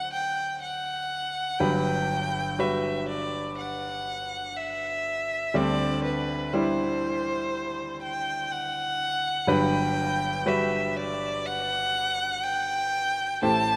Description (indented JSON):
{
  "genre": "pop",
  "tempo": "61 BPM",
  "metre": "4/4",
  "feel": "straight",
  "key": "G major",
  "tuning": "A4 = 441 Hz",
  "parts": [
    { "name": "warm violin", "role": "melody", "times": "0.0-13.8 s", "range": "B4 to A5", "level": "-30 LUFS", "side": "equal", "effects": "none" },
    { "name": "clear grand piano", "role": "accompaniment", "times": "0.0-13.8 s", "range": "G1 to C5", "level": "-30 LUFS", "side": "equal", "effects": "none" }
  ],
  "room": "moderate lush hall reverb, RT60 2.7 s",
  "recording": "rough home demo mix",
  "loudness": "-28 LUFS",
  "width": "mono",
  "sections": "0.0-1.6 A section; 1.6-13.8 B section",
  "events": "none",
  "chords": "0.0 D7; 1.6 Gmaj7; 5.5 D7sus4; 9.5 Gmaj7"
}